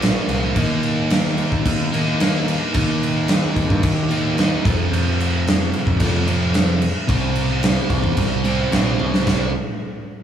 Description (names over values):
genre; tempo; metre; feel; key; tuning
classic rock; 110 BPM; 4/4; straight; unclear; A4 = 440 Hz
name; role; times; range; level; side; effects
sludgy distorted guitar; riff; 0.0-9.5 s; F2 to Eb4; -21 LUFS; right 1 dB; overdrive
growling picked electric bass; bass; 0.0-9.5 s; Bb1 to G2; -22 LUFS; equal; overdrive
huge arena drum kit; drums; 0.0-9.4 s; crash cymbal, kick drum, snare drum, toms; -20 LUFS; equal; none
room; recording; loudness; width
moderate large studio reverb, RT60 1.1 s; band playing live in one room; -16 LUFS; side -9 dB against mid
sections
0.0-9.3 A section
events
drum fill 9.0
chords
0.0 Bbsus2; 0.6 Eb5; 4.6 F5; 7.1 C5